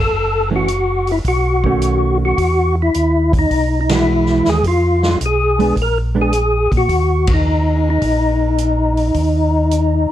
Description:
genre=soul jazz organ trio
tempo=106 BPM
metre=4/4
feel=swing 69% on 8ths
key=Eb minor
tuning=A4 = 441 Hz
part: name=percussive tonewheel organ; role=melody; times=0.0-10.1 s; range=D#4 to Bb4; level=-16 LUFS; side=left 1 dB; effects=slow rotary speaker, overdrive, chorus vibrato
part: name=mellow tonewheel organ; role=bass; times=0.0-10.1 s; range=Gb1 to Bb2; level=-18 LUFS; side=equal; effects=slow rotary speaker
part: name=hollow-body jazz guitar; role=accompaniment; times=0.5-6.3 s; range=D#3 to F#4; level=-19 LUFS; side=right 5 dB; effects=none
part: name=swinging big-band drum kit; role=drums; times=0.7-9.9 s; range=hi-hat, kick drum, ride cymbal, snare drum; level=-22 LUFS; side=equal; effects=none
room=light reverb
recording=dark, warm production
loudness=-13 LUFS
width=side -12 dB against mid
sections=0.0-10.1 A section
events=band accent 3.8, 7.2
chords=0.1 Gbm7; 1.2 B9; 2.4 Emaj9; 4.6 Fdim; 5.8 Bb7b9; 6.9 Ebm

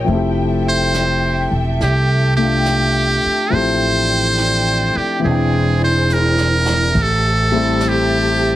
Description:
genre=jazz ballad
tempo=70 BPM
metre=4/4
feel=swing 67% on 8ths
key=F major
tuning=A4 = 442 Hz
part: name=warm concert grand piano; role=accompaniment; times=0.0-8.6 s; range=E3 to G5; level=-20 LUFS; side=left 3 dB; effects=none
part: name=warm symphonic string section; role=sustained chords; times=0.0-8.6 s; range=E4 to A5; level=-25 LUFS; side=left 1 dB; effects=none
part: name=upright bass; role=bass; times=0.0-8.6 s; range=E1 to C2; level=-18 LUFS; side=right 1 dB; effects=none
part: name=jazz brush drum kit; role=drums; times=0.1-8.6 s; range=brushed snare drum, hi-hat, kick drum, ride cymbal, snare drum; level=-29 LUFS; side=right 1 dB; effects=none
part: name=trumpet with metal mute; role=melody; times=0.7-8.6 s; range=G4 to C5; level=-18 LUFS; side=right 2 dB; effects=none
room=moderate large studio reverb, RT60 0.9 s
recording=heavily compressed radio sound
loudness=-14 LUFS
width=side -14 dB against mid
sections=0.0-7.0 A section; 7.0-8.6 B section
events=drum fill 6.1-7.0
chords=0.1 Fmaj9; 5.2 E7alt; 7.0 Am7

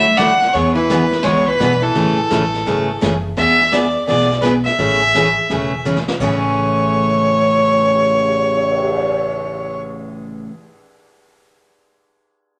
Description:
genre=country, western swing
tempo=170 BPM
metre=4/4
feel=swing 63% on 8ths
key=A major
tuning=A4 = 440 Hz
part: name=rich fiddle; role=melody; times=0.0-9.8 s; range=A4 to F#5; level=-18 LUFS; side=equal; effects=none
part: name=archtop guitar, miked and amplified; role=second line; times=0.0-3.0 s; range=E3 to D4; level=-24 LUFS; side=equal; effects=none
part: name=picked steel-string acoustic guitar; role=accompaniment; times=0.0-10.5 s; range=A2 to G#4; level=-21 LUFS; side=equal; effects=none
part: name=upright bass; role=bass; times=0.0-10.4 s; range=E1 to D3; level=-30 LUFS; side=equal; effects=none
part: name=vintage brush drum kit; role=drums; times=0.2-9.0 s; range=brushed snare drum, crash cymbal, cymbal swell, hi-hat, kick drum, snare drum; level=-28 LUFS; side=equal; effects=none
room=wet studio reverb, RT60 0.8 s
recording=none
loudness=-16 LUFS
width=mono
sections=0.0-3.4 A section; 3.4-6.2 B section; 6.2-9.0 C section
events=drum fill 5.8-6.2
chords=0.0 Dadd9; 0.5 E7; 2.0 Amaj7; 3.4 E7; 4.8 Amaj7

